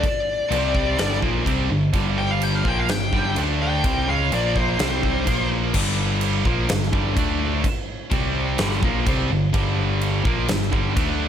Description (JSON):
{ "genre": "hard rock", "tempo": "126 BPM", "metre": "4/4", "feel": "straight", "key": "G minor", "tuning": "A4 = 440 Hz", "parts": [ { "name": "high-gain lead guitar", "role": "melody", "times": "0.0-5.5 s", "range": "C5 to G5", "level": "-25 LUFS", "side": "left 2 dB", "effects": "distortion, digital delay" }, { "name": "heavy high-gain guitar", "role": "riff", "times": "0.0-11.3 s", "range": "G2 to D4", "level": "-30 LUFS", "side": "equal", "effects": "distortion" }, { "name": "sludgy distorted guitar", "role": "riff", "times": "0.0-11.3 s", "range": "G2 to D4", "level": "-27 LUFS", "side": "left 10 dB", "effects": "overdrive" }, { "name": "tight distorted guitar", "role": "riff", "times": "0.0-11.3 s", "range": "G2 to D4", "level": "-26 LUFS", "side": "right 11 dB", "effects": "distortion" }, { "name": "huge arena drum kit", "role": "drums", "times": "0.0-11.1 s", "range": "crash cymbal, kick drum, snare drum", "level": "-25 LUFS", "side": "equal", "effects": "none" }, { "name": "picked electric bass", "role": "bass", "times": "0.5-11.3 s", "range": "G1 to D2", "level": "-25 LUFS", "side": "equal", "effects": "none" } ], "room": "little or no reverb", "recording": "none", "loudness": "-19 LUFS", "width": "side -9 dB against mid", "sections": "0.0-5.7 A section; 5.7-11.3 B section", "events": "lead electric guitar solo 0.0-5.7", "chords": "0.0 D5; 0.5 C5; 1.0 Gm; 3.4 D5; 3.8 C#maj7#11/B#; 4.3 Bb5; 4.8 C5; 5.3 Bb5; 5.7 Gm; 7.2 D5; 8.1 C5; 8.6 Gm" }